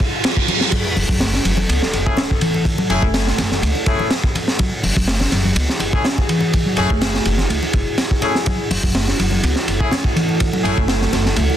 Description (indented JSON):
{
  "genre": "breakbeat, breaks",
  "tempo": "124 BPM",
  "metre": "4/4",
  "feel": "swing 53% on 16ths",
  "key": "F# minor",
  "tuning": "A4 = 441 Hz",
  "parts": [
    { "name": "deep dark ambient pad", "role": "sustained chords", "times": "0.0-11.6 s", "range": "F#3 to A4", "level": "-25 LUFS", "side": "right 1 dB", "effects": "chorus, built-in reverb, sidechain pumping" },
    { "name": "crunchy breakbeat drum kit", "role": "drums", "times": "0.0-11.5 s", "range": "crash cymbal, hi-hat, kick drum, ride cymbal, snare drum", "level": "-19 LUFS", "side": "equal", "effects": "none" },
    { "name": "riser, reverse cymbal and sub drop", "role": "sound effects", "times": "0.0-2.7 s", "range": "none", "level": "-24 LUFS", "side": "right 3 dB", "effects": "none" },
    { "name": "congas", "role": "percussion", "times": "0.5-11.6 s", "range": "none", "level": "-29 LUFS", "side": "left 4 dB", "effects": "none" },
    { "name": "picked electric bass", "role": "riff", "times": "0.7-11.4 s", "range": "E3 to C#4", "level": "-22 LUFS", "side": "equal", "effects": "vintage 12-bit sampler grit, ping-pong delay" },
    { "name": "upright bass", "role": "bass", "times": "1.0-11.5 s", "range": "F#1 to C#2", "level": "-21 LUFS", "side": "equal", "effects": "tube saturation" },
    { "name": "brilliant horn section", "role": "stabs", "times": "2.1-10.8 s", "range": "A3 to G#4", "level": "-24 LUFS", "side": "left 3 dB", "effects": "vintage 12-bit sampler grit, ping-pong delay" }
  ],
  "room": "studio reverb",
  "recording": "dense, heavily limited modern master",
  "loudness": "-15 LUFS",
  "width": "side -10 dB against mid",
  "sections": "0.7-11.6 A section",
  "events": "riser 0.0-0.7; reverse cymbal 0.0-0.7; drop 0.7-11.6; impact 0.7-2.7",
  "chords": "0.0 F#m9",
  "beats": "0.24 | 0.72 1.21 1.69 2.18 | 2.66 3.14 3.63 4.11 | 4.59 5.08 5.56 6.05 | 6.53 7.01 7.50 7.98 | 8.47 8.95 9.43 9.92 | 10.40 10.88 11.37"
}